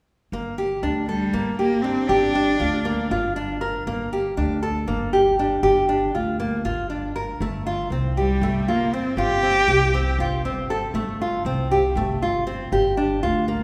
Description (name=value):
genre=contemporary instrumental, contemporary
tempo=237 BPM (eighths)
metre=7/8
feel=straight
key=G minor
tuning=A4 = 440 Hz
part: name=nylon-string guitar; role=arpeggios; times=0.3-13.6 s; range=A3 to Bb4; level=-24 LUFS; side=equal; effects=none
part: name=upright bass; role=bass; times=0.3-13.6 s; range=G1 to D2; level=-29 LUFS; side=equal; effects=none
part: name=warm cello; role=melody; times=1.1-3.1, 8.2-10.2 s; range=G3 to G4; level=-25 LUFS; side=equal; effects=none
room=wet concert hall reverb, RT60 2.5 s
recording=recorded in a church or concert hall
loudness=-22 LUFS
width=mono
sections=0.3-13.6 A section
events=none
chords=0.3 Gm; 7.4 Fadd9/G; 12.7 Gm7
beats=| 0.33 0.58 0.84 1.09 1.34 1.59 1.85 | 2.10 2.35 2.61 2.86 3.11 3.37 3.62 | 3.87 4.12 4.38 4.63 4.88 5.13 5.39 | 5.64 5.89 6.15 6.40 6.65 6.91 7.16 | 7.41 7.66 7.92 8.17 8.42 8.68 8.93 | 9.18 9.44 9.69 9.94 10.19 10.45 10.70 | 10.95 11.21 11.46 11.71 11.97 12.22 12.47 | 12.73 12.98 13.23 13.49